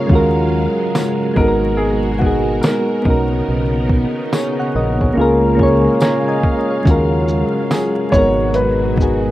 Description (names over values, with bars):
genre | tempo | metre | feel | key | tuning
lo-fi hip hop | 71 BPM | 4/4 | swing 62% on 16ths | Eb minor | A4 = 440 Hz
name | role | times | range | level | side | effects
soft electric-piano-like synth keys | accompaniment | 0.0-9.3 s | Ab3 to Bb5 | -16 LUFS | equal | chorus, cassette tape, low-pass filter
string machine, cellos | sustained chords | 0.0-9.3 s | Cb3 to F5 | -23 LUFS | equal | ensemble chorus, low-pass filter
deep dub fingered electric bass | bass | 0.1-9.3 s | Ab1 to Eb2 | -19 LUFS | equal | none
lo-fi sampler-style drum kit | drums | 0.1-9.2 s | hi-hat, kick drum, shaker, snare drum | -16 LUFS | equal | none
tambourine | percussion | 1.0-7.9 s | none | -35 LUFS | right 2 dB | none
dark upright piano | melody | 1.4-9.3 s | Gb4 to Db5 | -19 LUFS | equal | low-pass filter
room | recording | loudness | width
light reverb | rough home demo mix, vinyl crackle | -13 LUFS | side -15 dB against mid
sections
0.0-9.3 A section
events
break 0.0-6.9; synth keys fill 5.6-6.9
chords
0.1 Ebm11; 1.4 Abm9; 3.1 Bmaj9; 5.2 Bbm7/Db; 6.9 Ebm11; 8.1 Abm9